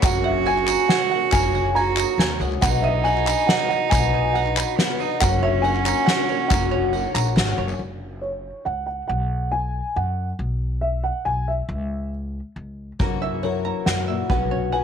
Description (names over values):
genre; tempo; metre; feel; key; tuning
indie folk with a building arrangement; 139 BPM; 3/4; straight; F# mixolydian; A4 = 439 Hz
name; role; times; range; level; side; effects
dark upright piano; melody; 0.0-14.8 s; C#5 to A#5; -25 LUFS; right 1 dB; none
rich cello; second line; 0.0-7.6 s; B3 to F#4; -24 LUFS; right 11 dB; none
picked twelve-string acoustic guitar; accompaniment; 0.0-7.8, 13.0-14.8 s; F#2 to G#4; -28 LUFS; left 15 dB; none
bluegrass banjo; arpeggios; 0.0-7.8, 13.0-14.8 s; A#4 to B5; -31 LUFS; right 10 dB; none
upright bass; bass; 0.0-14.8 s; F#1 to F#2; -26 LUFS; left 1 dB; none
soft-mallet drum kit; drums; 0.0-7.5, 13.0-14.8 s; kick drum, ride cymbal, snare drum; -24 LUFS; equal; none
group handclap; percussion; 0.0-7.7 s; none; -29 LUFS; left 12 dB; none
tambourine; percussion; 0.0-7.7 s; none; -35 LUFS; right 14 dB; none
fingerpicked steel-string acoustic guitar; accompaniment; 13.0-14.8 s; F#2 to B4; -28 LUFS; left 14 dB; none
room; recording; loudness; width
small room reverb; 1960s-style stereo with parts hard left and right; -19 LUFS; side -7 dB against mid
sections
0.0-7.8 A section; 7.8-14.8 B section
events
none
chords
0.0 F#add9; 2.6 B; 5.2 F#; 7.8 F#5; 9.1 B5; 10.4 Bsus4; 11.7 C#m; 13.0 F#7; 14.3 Bsus2